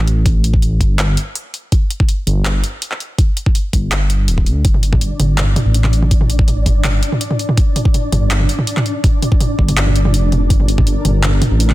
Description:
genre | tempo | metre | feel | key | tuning
half-time drum and bass | 164 BPM | 4/4 | half-time | G minor | A4 = 439 Hz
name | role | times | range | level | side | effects
dark detuned saw bass | bass | 0.0-11.7 s | D1 to D2 | -14 LUFS | equal | tube saturation
drum and bass drum kit | drums | 0.1-11.7 s | handclaps, hi-hat, toms | -19 LUFS | right 1 dB | overdrive
electronic kick drum | drums | 0.3-10.9 s | none | -14 LUFS | equal | overdrive
flickering grainy texture | texture | 5.0-11.7 s | D4 to D5 | -24 LUFS | left 1 dB | built-in reverb
room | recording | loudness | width
digital ambience | dense, heavily limited modern master | -12 LUFS | side -16 dB against mid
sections
0.0-11.7 A section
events
none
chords
0.0 Gm

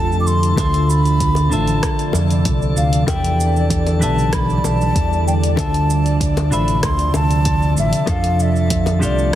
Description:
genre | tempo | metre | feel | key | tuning
sunset chillout | 96 BPM | 4/4 | straight | D dorian | A4 = 440 Hz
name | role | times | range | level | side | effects
baroque flute | melody | 0.0-9.4 s | D5 to D6 | -22 LUFS | equal | ping-pong delay
clean electric guitar | accompaniment | 0.0-9.4 s | D3 to F5 | -22 LUFS | moving between left 3 dB and right 5 dB | auto-pan
ethereal airy pad | sustained chords | 0.0-9.4 s | C3 to D5 | -24 LUFS | equal | ensemble chorus, built-in reverb
overdriven fingered electric bass | bass | 0.0-9.4 s | A1 to F2 | -18 LUFS | equal | none
drifting glass-harmonics texture | texture | 0.0-9.4 s | A4 to A5 | -30 LUFS | left 1 dB | chorus, built-in reverb
deep house drum kit | drums | 0.1-9.3 s | hi-hat, rim click, shaker | -26 LUFS | right 1 dB | none
electronic kick drum | drums | 0.6-8.8 s | none | -22 LUFS | equal | none
bongos | percussion | 0.6-9.0 s | none | -29 LUFS | left 4 dB | none
room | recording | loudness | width
light reverb | heavily compressed radio sound, multiband compression | -14 LUFS | side -12 dB against mid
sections
0.0-9.4 A section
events
none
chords
0.0 F6; 0.6 Dm9; 3.1 Em7; 5.6 Dm9; 8.1 F6

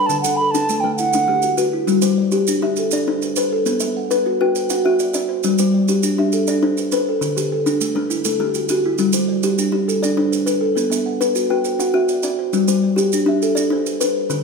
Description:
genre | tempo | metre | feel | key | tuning
southern african traditional, mbira-style interlocking cycle | 135 BPM (dotted quarters) | 12/8 | straight | G major | A4 = 440 Hz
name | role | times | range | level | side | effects
baroque flute | melody | 0.0-1.5 s | F#5 to B5 | -18 LUFS | right 3 dB | none
kalimba | arpeggios | 0.0-14.4 s | D3 to F#5 | -19 LUFS | left 3 dB | none
kalimba | arpeggios | 0.0-14.4 s | D3 to G5 | -21 LUFS | right 2 dB | none
maracas | percussion | 0.1-14.4 s | none | -27 LUFS | right 8 dB | none
room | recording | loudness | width
moderate recital hall reverb, RT60 1.4 s | recorded in a church or concert hall | -16 LUFS | side -4 dB against mid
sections
0.0-1.9 A section; 1.9-14.4 B section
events
none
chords
0.1 D; 1.9 G; 3.7 Bm; 5.4 G; 7.2 D; 9.0 G; 10.8 Bm; 12.5 G

